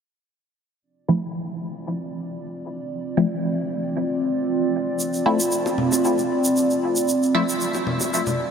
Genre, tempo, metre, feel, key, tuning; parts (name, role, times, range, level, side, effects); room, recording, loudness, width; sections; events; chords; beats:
dub techno; 115 BPM; 4/4; swing 53% on 16ths; D minor; A4 = 440 Hz
dark analog pad; sustained chords; 1.9-8.5 s; C4 to D5; -22 LUFS; right 1 dB; chorus, phaser
filtered dub chord stab; stabs; 1.1-7.4 s; F3 to E4; -25 LUFS; left 1 dB; phaser, dub echo
egg shaker; percussion; 5.0-8.4 s; -28 LUFS; right 2 dB
bongos and congas; percussion; 5.7-8.4 s; -29 LUFS; left 2 dB; dub echo
wet huge ambient reverb, RT60 7.7 s; dreamy mix soaked in reverb; -20 LUFS; side -7 dB against mid
0.8-8.5 A section
filter sweep on synth stab 0.8-8.5
0.8 Dm7
| 0.82 1.35 1.87 2.39 | 2.91 3.43 3.96 4.48 | 5.00 5.52 6.04 6.56 | 7.09 7.61 8.13